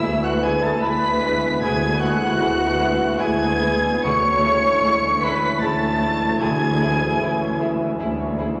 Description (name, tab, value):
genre	cinematic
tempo	76 BPM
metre	3/4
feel	rubato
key	unclear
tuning	A4 = 443 Hz
part	muted symphonic violin section	melody	0.0-7.6 s	E6 to C#7	-29 LUFS	equal	none
part	hollow concert flute	second line	0.0-7.6 s	E5 to C#6	-26 LUFS	equal	none
part	muted studio violin section	second line	0.0-8.5 s	E4 to G#4	-36 LUFS	equal	none
part	dark baby grand piano	accompaniment	0.0-8.6 s	D2 to E4	-29 LUFS	equal	none
part	muted symphonic viola section	accompaniment	0.0-7.6 s	A3 to C#5	-28 LUFS	equal	none
part	mellow French horn section	sustained chords	0.0-8.6 s	E3 to E4	-31 LUFS	equal	none
part	concert harp	arpeggios	0.0-8.6 s	D3 to B5	-30 LUFS	equal	none
part	muted symphonic cello section	bass	0.0-8.6 s	D2	-29 LUFS	equal	none
part	muted symphonic double bass section	bass	0.0-8.6 s	D2	-34 LUFS	equal	none
part	timpani	percussion	0.0-0.4, 4.0-5.2 s	none	barely audible	none	none
room	wet scoring stage reverb, RT60 2.0 s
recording	none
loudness	-20 LUFS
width	mono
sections	0.0-8.6 A section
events	none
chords	0.0 E/D; 4.0 C#m/D